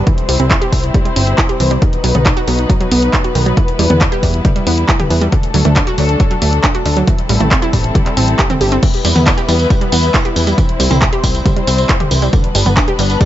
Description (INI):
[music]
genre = uplifting trance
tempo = 137 BPM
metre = 4/4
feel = straight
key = E minor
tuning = A4 = 440 Hz
[part]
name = muted studio string section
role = sustained chords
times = 0.0-13.3 s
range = F#3 to C5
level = -19 LUFS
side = left 2 dB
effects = sidechain pumping, low-pass filter
[part]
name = wide unison pluck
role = arpeggios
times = 0.0-13.3 s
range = D3 to G4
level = -19 LUFS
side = right 3 dB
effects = sidechain pumping, ping-pong delay
[part]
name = plucky analog bass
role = bass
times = 0.0-13.2 s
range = G1 to E2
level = -14 LUFS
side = equal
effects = sidechain pumping
[part]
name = electronic kick drum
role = drums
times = 0.1-13.3 s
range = none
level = -14 LUFS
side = equal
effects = none
[part]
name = punchy analog drum machine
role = drums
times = 0.1-13.3 s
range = crash cymbal, handclaps, hi-hat, tambourine, toms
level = -18 LUFS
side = equal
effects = none
[sound]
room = digital ambience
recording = nothing above 7.7 kHz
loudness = -11 LUFS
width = side -13 dB against mid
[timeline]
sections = 0.0-13.3 A section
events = none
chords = 0.1 C; 1.8 B; 3.6 Em; 5.3 D; 7.1 Am7; 8.8 Em; 10.6 C; 12.3 G